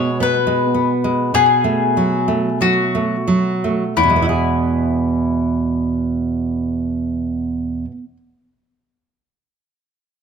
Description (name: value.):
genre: romantic duo for mandolin and classical guitar.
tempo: 42-54 BPM.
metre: 4/4.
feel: rubato.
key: E major.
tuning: A4 = 440 Hz.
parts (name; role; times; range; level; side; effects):
bowl-back mandolin; melody; 0.0-7.8 s; E4 to C#5; -18 LUFS; left 7 dB; slapback echo.
nylon-string guitar; accompaniment; 0.0-8.2 s; E2 to G#4; -17 LUFS; right 3 dB; none.
room: little or no reverb.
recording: close, detailed microphones.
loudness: -15 LUFS.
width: side -6 dB against mid.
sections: 0.0-4.0 A section; 4.0-9.1 B section.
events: slowing down 0.0-4.0.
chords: 0.0 E/B (rootless); 1.3 B5; 4.0 E.